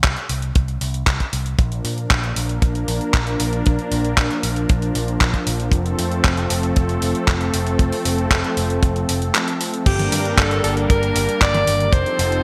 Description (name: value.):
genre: italo disco.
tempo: 116 BPM.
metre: 4/4.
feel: straight.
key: G minor.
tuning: A4 = 440 Hz.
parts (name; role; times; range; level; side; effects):
picked electric bass with an envelope filter; bass; 0.0-12.4 s; F1 to Bb2; -26 LUFS; equal; none.
detuned 8-bit digital drum machine; drums; 0.0-12.4 s; crash cymbal, handclaps, hi-hat, toms; -25 LUFS; equal; overdrive, gated reverb.
kick drum; drums; 0.0-12.0 s; none; -19 LUFS; equal; none.
warm analog pad; sustained chords; 1.6-12.4 s; F3 to Bb4; -25 LUFS; equal; chorus.
bright alto saxophone; melody; 9.9-12.4 s; G4 to D5; -23 LUFS; equal; digital delay.
room: moderate lush hall reverb, RT60 1.8 s, studio ambience.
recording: bright 1980s-style digital production.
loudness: -19 LUFS.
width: mono.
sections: 0.0-9.9 A section; 9.9-12.4 B section.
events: none.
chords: 0.0 C5; 1.6 Bb; 5.7 F; 9.9 Gm.